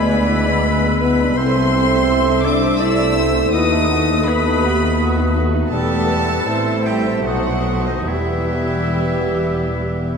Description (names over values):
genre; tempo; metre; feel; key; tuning
classical; 68-84 BPM; 3/4; rubato; E minor; A4 = 440 Hz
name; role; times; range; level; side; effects
warm chamber violin section; melody; 0.0-10.1 s; D#5 to E6; -24 LUFS; left 2 dB; none
clear oboe; second line; 0.0-10.2 s; D#4 to E5; -27 LUFS; equal; none
dark clarinet; second line; 0.0-10.2 s; A4 to C5; -29 LUFS; right 2 dB; none
mellow flute section; second line; 0.0-10.2 s; D#6 to E6; -29 LUFS; left 1 dB; none
warm studio violin section; second line; 0.0-10.2 s; G#3 to G4; -25 LUFS; right 2 dB; none
dark symphonic viola section; accompaniment; 0.0-10.1 s; F#4 to E5; -27 LUFS; right 1 dB; none
mellow bassoon; accompaniment; 0.0-10.2 s; G3 to A3; -26 LUFS; left 2 dB; none
mellow French horn section; sustained chords; 0.0-10.2 s; D#3 to E4; -21 LUFS; left 1 dB; stereo widening
dark symphonic double bass section; bass; 0.0-10.2 s; E1 to D#2; -23 LUFS; equal; none
warm studio cello section; bass; 0.0-10.2 s; C2 to B2; -25 LUFS; right 1 dB; none
room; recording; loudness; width
wet cathedral reverb, RT60 5.5 s; in a vast, echoing space; -15 LUFS; side -6 dB against mid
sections
0.0-10.2 A section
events
none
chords
0.0 E7/D; 1.4 Am/C; 3.5 B7/D#; 5.7 Em; 6.5 Am7; 7.3 B7b9; 8.1 Em